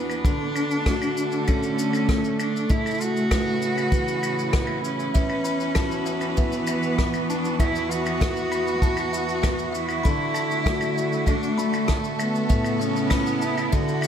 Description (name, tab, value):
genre	folktronica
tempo	98 BPM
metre	4/4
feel	straight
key	unclear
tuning	A4 = 439 Hz
part	rich cello	melody	0.0-14.1 s	A3 to F#4	-27 LUFS	right 1 dB	ping-pong delay
part	rich string quartet	sustained chords	0.0-14.1 s	C#3 to B4	-28 LUFS	right 2 dB	none
part	picked steel-string acoustic guitar	arpeggios	0.0-14.1 s	E2 to F#4	-28 LUFS	left 3 dB	none
part	claves, shaker and rim click	drums	0.1-14.1 s	none	-32 LUFS	left 1 dB	none
part	kick drum	drums	0.2-13.8 s	none	-23 LUFS	equal	none
part	buzzing kalimba	second line	5.1-14.1 s	E5 to B5	-32 LUFS	left 2 dB	ping-pong delay
room	moderate plate reverb, RT60 2.0 s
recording	dreamy mix soaked in reverb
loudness	-21 LUFS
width	side -8 dB against mid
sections	0.0-14.1 A section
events	none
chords	0.3 D; 2.7 Aadd9; 5.1 Esus2; 10.0 D; 12.5 Aadd9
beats	| 0.25 0.86 1.48 2.09 | 2.70 3.31 3.92 4.54 | 5.15 5.76 6.37 6.99 | 7.60 8.21 8.82 9.44 | 10.05 10.66 11.27 11.88 | 12.50 13.11 13.72